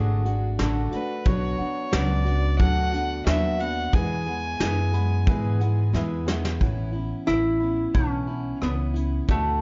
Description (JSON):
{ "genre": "honky-tonk and classic country", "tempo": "90 BPM", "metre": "4/4", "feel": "straight", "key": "A major", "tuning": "A4 = 440 Hz", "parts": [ { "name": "picked steel-string acoustic guitar", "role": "accompaniment", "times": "0.0-9.6 s", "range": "E2 to G#4", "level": "-33 LUFS", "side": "equal", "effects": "none" }, { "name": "warm grand piano", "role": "accompaniment", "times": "0.0-6.6 s", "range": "D4 to B5", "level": "-36 LUFS", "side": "equal", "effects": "none" }, { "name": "upright bass", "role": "bass", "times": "0.0-9.6 s", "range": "G#1 to G#2", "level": "-28 LUFS", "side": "equal", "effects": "none" }, { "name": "soft brush drum kit", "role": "drums", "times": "0.3-9.4 s", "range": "hi-hat, kick drum, rim click, snare drum", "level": "-28 LUFS", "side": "equal", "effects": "none" }, { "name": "clear fiddle", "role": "second line", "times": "0.9-5.9 s", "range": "B4 to G#5", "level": "-32 LUFS", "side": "equal", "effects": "none" }, { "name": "lap resonator guitar", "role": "melody", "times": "7.3-9.6 s", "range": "A3 to E4", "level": "-27 LUFS", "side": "equal", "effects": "none" } ], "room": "light reverb", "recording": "dark, warm production, nothing above 7.5 kHz", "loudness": "-24 LUFS", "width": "mono", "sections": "0.0-6.6 A section; 6.6-9.6 B section", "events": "fiddle solo 0.0-6.6; grand piano fill 4.6-6.6; drum fill 5.9-6.6", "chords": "0.0 D; 1.3 Bm; 3.9 E; 6.6 Aadd9" }